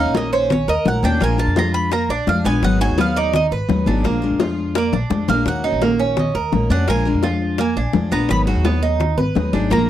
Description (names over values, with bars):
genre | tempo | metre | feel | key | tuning
latin, Cuban son and guajira | 170 BPM | 4/4 | straight | Eb harmonic minor | A4 = 440 Hz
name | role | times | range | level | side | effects
bowl-back mandolin | melody | 0.0-9.9 s | C5 to Cb6 | -23 LUFS | equal | none
picked steel-string acoustic guitar | accompaniment | 0.0-9.9 s | Eb3 to Ab4 | -22 LUFS | left 4 dB | none
Cuban tres | arpeggios | 0.0-9.9 s | Bb3 to Cb5 | -22 LUFS | right 5 dB | none
upright bass | bass | 0.0-9.9 s | Ab1 to F2 | -21 LUFS | equal | none
bongos | percussion | 0.1-9.9 s | none | -23 LUFS | left 9 dB | none
congas | percussion | 0.1-9.8 s | none | -24 LUFS | left 2 dB | none
room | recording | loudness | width
little or no reverb | dry, close 1970s-style studio recording | -16 LUFS | side -12 dB against mid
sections
0.0-9.9 A section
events
mandolin solo 0.0-9.9; drum fill 4.8-5.5, 9.7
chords
0.0 Ebm7; 1.2 Bb7; 2.6 Abm7; 4.0 Bb7; 5.5 Ebm7; 6.9 Bb7; 8.3 Abm7